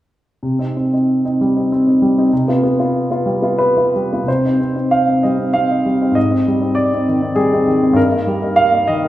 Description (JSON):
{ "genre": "classical, romantic character piece for solo piano", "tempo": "85-101 BPM", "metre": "3/4", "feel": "rubato", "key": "C minor", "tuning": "A4 = 440 Hz", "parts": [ { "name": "clear grand piano", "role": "solo", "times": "0.4-9.1 s", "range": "G2 to F5", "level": "-13 LUFS", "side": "equal", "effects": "none" } ], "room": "wet recital hall reverb, RT60 1.9 s", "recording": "heard from further back in the room", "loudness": "-13 LUFS", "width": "side -14 dB against mid", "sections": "0.4-4.3 A section; 4.3-9.1 B section", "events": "none", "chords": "0.4 Cm; 2.3 G7/C; 4.3 Cm; 6.2 Abmaj7; 8.0 Eb/G" }